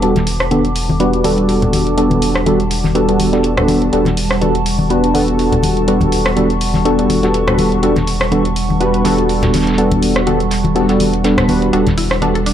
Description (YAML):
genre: deep house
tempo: 123 BPM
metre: 4/4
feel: swing 55% on 16ths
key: E dorian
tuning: A4 = 441 Hz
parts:
  - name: warbly tape-like pad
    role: sustained chords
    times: 0.0-12.5 s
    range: G3 to D6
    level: -21 LUFS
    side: right 2 dB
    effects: chorus, built-in reverb, phaser
  - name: warm analog keys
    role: stabs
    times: 0.0-12.3 s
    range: G3 to B4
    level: -14 LUFS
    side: equal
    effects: chorus, low-pass filter, tape echo
  - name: round analog bass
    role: bass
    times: 0.0-12.5 s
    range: E1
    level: -20 LUFS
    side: equal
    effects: none
  - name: damped 70s drum kit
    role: drums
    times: 0.0-12.5 s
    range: hi-hat, snare drum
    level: -32 LUFS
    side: right 2 dB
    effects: high-pass filter on hats, low-pass filter on hats, vintage 12-bit sampler grit, high-pass filter on snare, low-pass filter on snare, high-pass filter on room, low-pass filter on room
  - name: house drum kit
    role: drums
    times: 0.0-12.5 s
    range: hi-hat, rim click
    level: -22 LUFS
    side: equal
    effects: vintage 12-bit sampler grit
  - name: congas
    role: percussion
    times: 0.2-12.3 s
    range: none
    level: -21 LUFS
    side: left 2 dB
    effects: none
  - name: mallet-like synth pluck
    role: arpeggios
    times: 11.7-12.5 s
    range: D4 to A4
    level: -21 LUFS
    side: left 1 dB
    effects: chorus, tape echo
room: light reverb, small room ambience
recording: none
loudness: -12 LUFS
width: side -10 dB against mid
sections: 0.0-12.5 A section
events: filter sweep on synth keys 0.0-12.5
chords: 0.0 Em11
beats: | 0.03 0.51 1.00 1.49 | 1.98 2.46 2.95 3.44 | 3.93 4.42 4.90 5.39 | 5.88 6.37 6.85 7.34 | 7.83 8.32 8.80 9.29 | 9.78 10.27 10.76 11.24 | 11.73 12.22